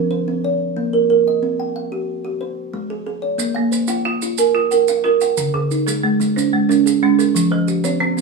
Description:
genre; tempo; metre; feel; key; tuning
southern african traditional, mbira-style interlocking cycle; 122 BPM (dotted quarters); 12/8; straight; Bb equiheptatonic; A4 = 439 Hz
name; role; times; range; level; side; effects
kalimba; arpeggios; 0.0-8.2 s; Db3+43c to G5-43c; -17 LUFS; right 4 dB; none
maracas; percussion; 3.4-8.2 s; none; -27 LUFS; right 6 dB; none
folk marimba with hard mallets; arpeggios; 3.6-8.2 s; Db3+43c to Ab5+29c; -20 LUFS; right 2 dB; none
room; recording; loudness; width
wet studio reverb, RT60 0.6 s; small room ambience; -16 LUFS; side -3 dB against mid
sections
0.0-3.4 A section; 3.4-8.2 A section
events
none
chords
0.4 Bbm; 1.4 Cm; 2.4 Ab; 3.4 Bb5; 5.4 Db5; 7.3 Fm

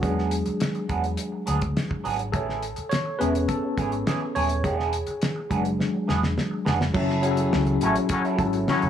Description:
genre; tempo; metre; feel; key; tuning
lush 1970s-style soul; 104 BPM; 4/4; straight; unclear; A4 = 438 Hz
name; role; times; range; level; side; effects
tine electric piano; accompaniment; 0.0-8.9 s; F#3 to C#5; -26 LUFS; left 2 dB; medium stereo tremolo
electric guitar through a small old amp; riff; 0.0-8.9 s; E3 to A4; -30 LUFS; right 6 dB; wah
vintage muted fingered electric bass; bass; 0.0-8.9 s; D#1 to E2; -28 LUFS; equal; none
damped 70s drum kit; drums; 0.0-8.9 s; crash cymbal, hi-hat, kick drum, snare drum; -28 LUFS; equal; none
muted trombone section; stabs; 7.8-8.9 s; A2 to C#4; -26 LUFS; left 4 dB; none
room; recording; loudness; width
light reverb, small room ambience; none; -22 LUFS; side -9 dB against mid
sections
0.0-6.9 A section; 6.9-8.9 B section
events
tine electric piano solo 0.0-6.9; drum fill 5.8-6.9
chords
0.0 E9; 2.3 Amaj7; 4.6 E7; 6.9 F#m7

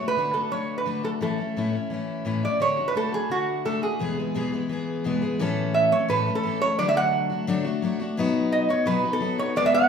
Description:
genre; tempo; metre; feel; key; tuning
country; 172 BPM; 4/4; straight; A major; A4 = 442 Hz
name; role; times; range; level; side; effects
lap resonator guitar; melody; 0.0-9.9 s; F#4 to F#5; -23 LUFS; right 3 dB; none
picked steel-string acoustic guitar; accompaniment; 0.0-9.9 s; E2 to A4; -26 LUFS; left 4 dB; none
room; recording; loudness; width
wet large studio reverb, RT60 1.3 s; minimal, uncompressed stereo recording; -22 LUFS; side -6 dB against mid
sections
0.0-5.4 A section; 5.4-9.9 B section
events
none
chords
0.0 D; 1.2 A; 2.6 D; 4.0 E; 5.4 A; 6.8 D; 8.2 B

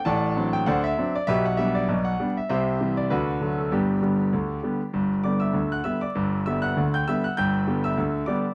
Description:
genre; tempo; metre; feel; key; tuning
ragtime piano; 99 BPM; 2/4; swing 56% on 16ths; G major; A4 = 436 Hz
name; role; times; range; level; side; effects
bright concert grand piano; solo; 0.0-8.5 s; G1 to G6; -24 LUFS; equal; none
room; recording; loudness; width
light reverb; dry, close 1970s-style studio recording, vinyl crackle; -25 LUFS; mono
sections
0.0-6.1 A section; 6.1-8.5 A section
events
none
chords
0.1 D7/A; 1.3 G/B; 2.5 C; 3.1 D; 3.7 G

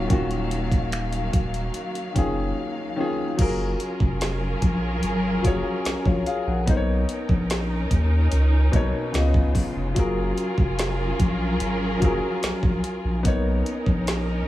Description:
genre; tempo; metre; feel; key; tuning
contemporary R&B; 73 BPM; 4/4; straight; F# major; A4 = 442 Hz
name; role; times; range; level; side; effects
warm concert grand piano; accompaniment; 0.0-14.5 s; B2 to F#5; -28 LUFS; left 3 dB; none
warm studio string section; sustained chords; 0.0-14.5 s; C#3 to E#5; -29 LUFS; equal; none
saturated sub bass; bass; 0.0-14.4 s; D#1 to D#2; -24 LUFS; equal; none
smooth R&B drum kit; drums; 0.1-14.3 s; crash cymbal, finger snaps, hi-hat, kick drum, snare drum; -23 LUFS; equal; none
room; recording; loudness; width
digital ambience; small room ambience; -21 LUFS; side -15 dB against mid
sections
0.0-3.4 A section; 3.4-14.5 B section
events
none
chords
0.0 D#m9; 3.4 F#maj9; 6.7 Bmaj9; 9.1 C#9; 10.0 F#maj9; 13.2 Bmaj9

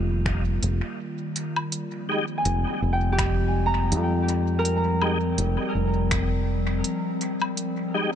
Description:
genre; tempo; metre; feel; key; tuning
ambient dub; 82 BPM; 4/4; swing 57% on 16ths; F minor; A4 = 436 Hz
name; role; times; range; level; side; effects
warbly tape-like pad; sustained chords; 0.0-8.2 s; Eb3 to Bb4; -29 LUFS; left 2 dB; chorus, built-in reverb
fingered electric bass; bass; 0.0-6.8 s; F1 to F2; -24 LUFS; equal; none
electronic kick drum; drums; 0.3-6.3 s; none; -29 LUFS; equal; none
organic electronic drum kit; drums; 0.3-7.7 s; finger snaps, hi-hat, woodblock; -32 LUFS; left 1 dB; dub echo
tonewheel organ; stabs; 2.1-8.1 s; Ab3 to G4; -32 LUFS; left 1 dB; chorus vibrato, fast rotary speaker, dub echo
Celtic harp; arpeggios; 2.4-7.4 s; G4 to Bb5; -29 LUFS; right 2 dB; tape echo
room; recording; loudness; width
light reverb; nothing above 10.3 kHz; -22 LUFS; side -9 dB against mid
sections
0.0-1.7 A section; 1.7-8.2 B section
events
none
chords
0.0 Ebadd9/F; 1.7 Fm9

